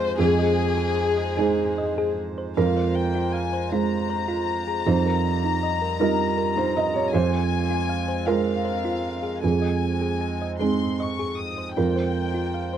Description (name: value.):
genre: neoclassical piano and strings.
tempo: 52 BPM (dotted quarters).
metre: 6/8.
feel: rubato.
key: F minor.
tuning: A4 = 440 Hz.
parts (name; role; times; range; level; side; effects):
warm chamber violin section; melody; 0.0-12.8 s; Ab4 to Eb6; -28 LUFS; left 7 dB; none.
felt-muted upright piano; accompaniment; 0.0-12.8 s; F2 to Eb5; -23 LUFS; right 4 dB; none.
hand-pumped harmonium; sustained chords; 0.0-12.8 s; G3 to Eb5; -34 LUFS; right 2 dB; stereo widening.
thumb-piano-like synth pluck; arpeggios; 0.0-12.8 s; Eb4 to Ab5; -31 LUFS; left 2 dB; chorus, slapback echo.
room: light reverb.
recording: dry, close 1970s-style studio recording.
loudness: -21 LUFS.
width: side -9 dB against mid.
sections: 0.0-2.6 A section; 2.6-12.8 A section.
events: none.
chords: 0.2 Ab/F; 2.6 Fm; 4.9 Ebadd9/F; 7.1 Fm; 9.4 Ab/F; 11.8 Fm.